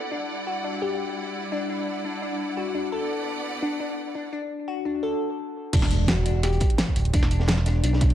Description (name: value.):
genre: liquid drum and bass.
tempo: 171 BPM.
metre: 4/4.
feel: straight.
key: E minor.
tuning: A4 = 442 Hz.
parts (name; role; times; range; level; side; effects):
bright studio string section; sustained chords; 0.0-4.3 s; G3 to F#5; -32 LUFS; right 2 dB; sidechain pumping, low-pass filter.
harp-like synth pluck; arpeggios; 0.1-8.0 s; D4 to A4; -29 LUFS; left 3 dB; chorus, cassette tape, dub echo.
smooth synth bass; bass; 5.7-8.1 s; D1 to B1; -22 LUFS; right 1 dB; none.
crunchy breakbeat drum kit; drums; 5.7-8.1 s; hi-hat, snare drum; -34 LUFS; right 1 dB; high-pass filter on hats, high-pass filter on snare, high-pass filter on room.
electronic kick drum; drums; 5.7-8.1 s; none; -22 LUFS; right 1 dB; none.
pop drum kit; drums; 5.7-8.1 s; crash cymbal, hi-hat, snare drum; -27 LUFS; equal; none.
impact; sound effects; 5.7-7.1 s; none; -30 LUFS; right 2 dB; none.
room: small room ambience.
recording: none.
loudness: -23 LUFS.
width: side -11 dB against mid.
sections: 0.0-5.7 A section; 5.7-8.1 B section.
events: drop 5.7-8.1; impact 5.7-7.1.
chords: 0.1 Em9; 2.9 D69; 5.7 E7(no3).